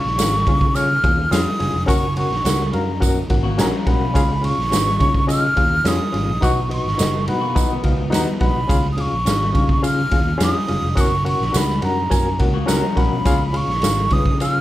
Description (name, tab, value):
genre	uptempo 1960s-style soul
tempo	106 BPM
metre	4/4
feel	straight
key	Db mixolydian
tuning	A4 = 441 Hz
part	breathy mellow concert flute	melody	0.0-14.6 s	Bb5 to F6	-22 LUFS	right 1 dB	none
part	barky reed electric piano	accompaniment	0.0-14.6 s	Cb3 to Ab5	-24 LUFS	left 3 dB	overdrive, fast tremolo
part	fingered electric bass	bass	0.0-14.6 s	F1 to Db3	-22 LUFS	equal	none
part	raw garage drum kit	drums	0.1-14.5 s	hi-hat, kick drum, ride cymbal, snare drum	-20 LUFS	equal	none
part	tambourine	percussion	0.2-14.5 s	none	-31 LUFS	right 8 dB	none
part	electric guitar through a small old amp	riff	3.4-8.5, 12.5-13.2 s	Eb3 to Gb4	-28 LUFS	left 5 dB	none
room	light reverb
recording	band playing live in one room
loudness	-16 LUFS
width	side -14 dB against mid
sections	0.0-14.6 A section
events	none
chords	0.0 Db; 1.9 Gb; 4.2 Db; 6.4 Cb; 8.7 Db; 11.0 Gb; 13.3 Db